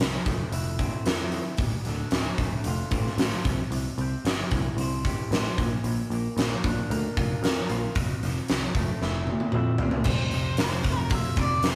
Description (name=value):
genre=quiet-loud alternative rock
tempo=113 BPM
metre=4/4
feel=straight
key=unclear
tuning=A4 = 440 Hz
part: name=electric guitar through a small old amp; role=arpeggios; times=0.0-11.8 s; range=D2 to C5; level=-37 LUFS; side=equal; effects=none
part: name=picked electric bass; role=bass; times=0.0-11.8 s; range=D1 to F2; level=-32 LUFS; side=equal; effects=none
part: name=big rock drum kit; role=drums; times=0.0-11.8 s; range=crash cymbal, hi-hat, kick drum, snare drum, toms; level=-29 LUFS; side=equal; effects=none
part: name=octave-fuzz lead guitar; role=melody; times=10.1-11.8 s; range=C5 to E5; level=-33 LUFS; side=equal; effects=distortion
room=light reverb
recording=rough rehearsal-room recording, warm saturation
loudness=-27 LUFS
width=mono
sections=0.0-10.1 A section; 10.1-11.8 B section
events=drum fill 9.0-10.1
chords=0.0 Fmaj7; 1.6 Dm7; 3.5 C; 5.6 Bb; 8.0 Fmaj7; 10.1 F